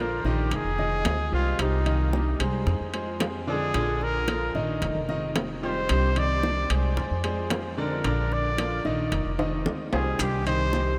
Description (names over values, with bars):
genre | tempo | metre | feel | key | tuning
latin, Cuban son and guajira | 112 BPM | 4/4 | straight | unclear | A4 = 440 Hz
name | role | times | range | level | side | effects
warm trumpet | melody | 0.0-11.0 s | Eb4 to D5 | -32 LUFS | equal | diffuse ambient delay
flamenco guitar | accompaniment | 0.0-11.0 s | C3 to G4 | -37 LUFS | equal | ensemble chorus
clear concert grand piano | arpeggios | 0.0-10.9 s | D3 to Eb5 | -34 LUFS | equal | diffuse ambient delay
upright bass | bass | 0.0-11.0 s | F1 to F2 | -30 LUFS | equal | none
bongos | percussion | 0.2-11.0 s | none | -38 LUFS | equal | none
timbales | percussion | 0.5-11.0 s | none | -38 LUFS | equal | none
claves | percussion | 10.2-10.5 s | none | -48 LUFS | equal | none
maracas | percussion | 10.2-11.0 s | none | -42 LUFS | equal | none
room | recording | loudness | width
moderate huge ambient reverb, RT60 4.0 s | dreamy mix soaked in reverb | -26 LUFS | mono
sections
0.0-11.0 A section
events
trumpet solo 0.0-11.0; drum fill 9.4-10.2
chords
0.0 Bb; 0.5 Fm7; 1.6 Cmadd9; 2.7 Fm7; 3.7 Bb; 4.8 Fm7; 5.9 Cmadd9; 7.0 Fm7; 8.0 Bb; 9.1 Fm7; 10.2 Cmadd9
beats
0.52 1.06 | 1.59 2.13 2.67 3.21 | 3.75 4.28 4.82 5.36 | 5.90 6.43 6.97 7.51 | 8.05 8.58 9.12 9.66 | 10.20 10.73